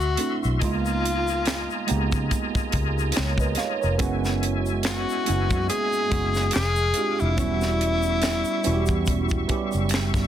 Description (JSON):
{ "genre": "R&B, neo-soul", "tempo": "71 BPM", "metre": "4/4", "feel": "swing 55% on 16ths", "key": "unclear", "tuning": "A4 = 440 Hz", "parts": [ { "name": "clear tenor saxophone", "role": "melody", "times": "0.0-9.7 s", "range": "E4 to G#4", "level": "-26 LUFS", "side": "left 3 dB", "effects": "slapback echo" }, { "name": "bright tonewheel organ", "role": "sustained chords", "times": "0.0-10.3 s", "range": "G3 to D6", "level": "-32 LUFS", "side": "left 2 dB", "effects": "fast rotary speaker, overdrive, chorus vibrato" }, { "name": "vintage muted fingered electric bass", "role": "bass", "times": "0.0-10.3 s", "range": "E1 to C#3", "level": "-26 LUFS", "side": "left 1 dB", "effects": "none" }, { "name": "tube shaker and finger snaps", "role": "percussion", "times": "0.0-10.3 s", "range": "none", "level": "-39 LUFS", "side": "left 8 dB", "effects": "none" }, { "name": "tine electric piano", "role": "accompaniment", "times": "0.2-10.3 s", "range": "F#3 to E#5", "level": "-27 LUFS", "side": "right 7 dB", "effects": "phaser" }, { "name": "tight funk drum kit", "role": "drums", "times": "0.2-10.3 s", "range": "finger snaps, hi-hat, kick drum, snare drum", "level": "-27 LUFS", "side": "equal", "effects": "none" } ], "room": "light reverb", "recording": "dense, heavily limited modern master", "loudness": "-21 LUFS", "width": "side -10 dB against mid", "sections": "0.0-10.3 A section", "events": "none", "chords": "0.0 D9; 0.6 C#13; 4.0 F#9sus4; 6.5 Fm6; 7.4 Em6" }